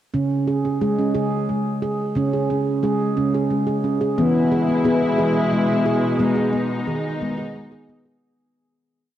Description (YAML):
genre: world meditative, meditative tuned percussion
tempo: 59 BPM (dotted quarters)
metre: 6/8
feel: straight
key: C# minor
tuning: A4 = 440 Hz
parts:
  - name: handpan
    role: arpeggios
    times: 0.1-8.2 s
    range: C#3 to G#4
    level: -19 LUFS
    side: right 1 dB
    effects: cassette tape
  - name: muted studio string section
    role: sustained chords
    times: 4.2-8.2 s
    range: B2 to E4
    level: -23 LUFS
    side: left 1 dB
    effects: cassette tape
room: wet lush hall reverb, RT60 2.6 s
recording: home recording on cassette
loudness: -18 LUFS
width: side -11 dB against mid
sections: 0.1-8.2 A section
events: fade-out 6.2-8.2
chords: 0.1 C#5; 4.2 E; 6.2 G#m